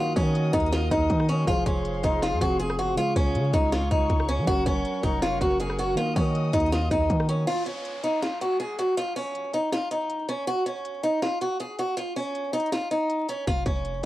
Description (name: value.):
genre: hip hop, trap.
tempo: 160 BPM.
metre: 4/4.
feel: half-time.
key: unclear.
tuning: A4 = 443 Hz.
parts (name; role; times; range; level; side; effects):
picked acoustic archtop guitar; melody; 0.0-14.0 s; Db4 to Ab4; -26 LUFS; equal; cassette tape.
soft electric-piano-like synth keys; accompaniment; 0.0-7.5 s; Db3 to C5; -30 LUFS; right 1 dB; chorus, cassette tape.
dark chamber string section; sustained chords; 0.0-7.5 s; Ab4 to Eb6; -38 LUFS; equal; cassette tape.
long sustained 808-style bass; bass; 0.2-7.5, 13.5-14.0 s; F1 to F3; -27 LUFS; equal; none.
trap drum kit; drums; 0.2-13.9 s; hi-hat, kick drum, rim click, snare drum; -29 LUFS; equal; vintage 12-bit sampler grit, cassette tape.
downlifter; sound effects; 7.5-10.5 s; none; -43 LUFS; equal; none.
room: light reverb.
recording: home recording on cassette, vinyl crackle.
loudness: -23 LUFS.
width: side -15 dB against mid.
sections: 0.0-7.5 A section; 7.5-14.1 B section.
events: break 7.5-13.5.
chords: 0.0 Ebm; 1.5 Fm; 3.0 Db; 4.5 Gb; 6.0 Ebm; 7.5 N.C.; 13.5 Eb7sus2/F (rootless).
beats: 0.35 0.72 1.10 | 1.47 1.85 2.22 2.60 | 2.97 3.35 3.72 4.10 | 4.47 4.85 5.22 5.60 | 5.97 6.35 6.72 7.10 | 7.47 7.85 8.22 8.60 | 8.97 9.35 9.72 10.10 | 10.47 10.85 11.22 11.60 | 11.97 12.35 12.72 13.10 | 13.47 13.85.